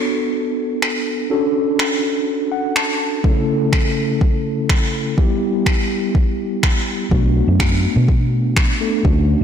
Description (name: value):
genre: dance-pop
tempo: 124 BPM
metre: 4/4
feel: straight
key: unclear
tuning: A4 = 441 Hz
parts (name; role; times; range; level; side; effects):
- mellow tine electric piano; accompaniment; 0.0-9.4 s; C#3 to A5; -19 LUFS; equal; medium stereo tremolo, sidechain pumping
- smooth R&B drum kit; drums; 0.8-9.2 s; finger snaps, kick drum; -18 LUFS; equal; overdrive, soft clipping on snare
- vintage muted fingered electric bass; bass; 7.1-9.4 s; B1 to B2; -16 LUFS; equal; sidechain pumping
room: light reverb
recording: blown-out, overdriven recording, overdrive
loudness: -15 LUFS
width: side -8 dB against mid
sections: 0.0-9.4 A section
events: tine electric piano fill 2.3-3.2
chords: 0.0 Bm7; 1.3 Dmaj7; 3.2 A/C#; 5.2 Em; 7.1 Bm7